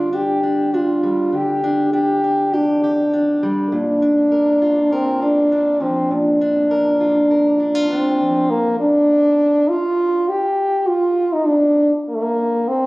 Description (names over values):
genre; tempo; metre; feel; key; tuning
folk; 100 BPM; 4/4; straight; unclear; A4 = 440 Hz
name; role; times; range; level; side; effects
warm French horn; melody; 0.0-12.9 s; A3 to G4; -16 LUFS; equal; none
fingerpicked plugged-in steel-string acoustic guitar; accompaniment; 0.0-8.5 s; Bb2 to Bb4; -21 LUFS; equal; none
room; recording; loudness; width
moderate concert hall reverb, RT60 2.3 s; recorded on a phone in the room, club reverb, compression; -15 LUFS; side -22 dB against mid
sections
0.0-8.5 A section; 8.5-12.9 B section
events
none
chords
0.0 Dsus4; 3.7 Bbadd9; 8.5 N.C.